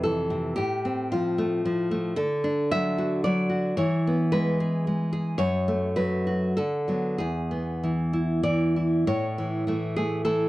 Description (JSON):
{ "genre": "romantic piece for solo classical guitar", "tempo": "93-116 BPM", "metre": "3/4", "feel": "rubato", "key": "A major", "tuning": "A4 = 440 Hz", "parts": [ { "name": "nylon-string guitar", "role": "solo", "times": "0.0-10.5 s", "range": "E2 to E5", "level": "-23 LUFS", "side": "equal", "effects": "none" } ], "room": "light reverb", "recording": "dark, warm production", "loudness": "-23 LUFS", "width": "side -17 dB against mid", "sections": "0.0-9.1 A section; 9.1-10.5 B section", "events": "none", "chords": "0.0 Fmaj7; 0.6 F/A; 2.2 D; 3.8 E; 5.4 F#m; 6.6 Bm7/D; 7.2 E; 9.1 A" }